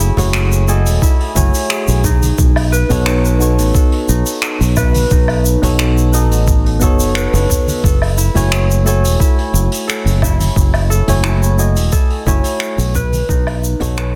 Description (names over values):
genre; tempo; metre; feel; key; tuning
sunset chillout; 88 BPM; 4/4; straight; F# dorian; A4 = 435 Hz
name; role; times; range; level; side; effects
soft electric-piano-like synth keys; accompaniment; 0.0-14.2 s; A3 to G#5; -23 LUFS; equal; chorus, digital delay
concert harp; arpeggios; 0.0-14.2 s; D#4 to B4; -24 LUFS; equal; digital delay
fingered electric bass; bass; 0.0-14.2 s; E1 to B1; -16 LUFS; equal; none
jazz brush drum kit; drums; 0.0-14.1 s; finger snaps, hi-hat, shaker, woodblock; -24 LUFS; equal; none
congas; percussion; 0.2-13.9 s; none; -24 LUFS; equal; none
electronic kick drum; drums; 1.0-13.4 s; none; -16 LUFS; equal; none
room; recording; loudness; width
light reverb, small room ambience; dense, heavily limited modern master; -14 LUFS; mono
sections
0.0-14.2 A section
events
fade-out 11.5-14.2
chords
0.0 F#m9; 2.0 B9; 7.8 F#m9; 13.0 B9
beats
0.34 1.02 1.70 | 2.38 3.06 3.75 4.43 | 5.11 5.79 6.47 7.16 | 7.84 8.52 9.20 9.88 | 10.56 11.25 11.93 12.61 | 13.29 13.97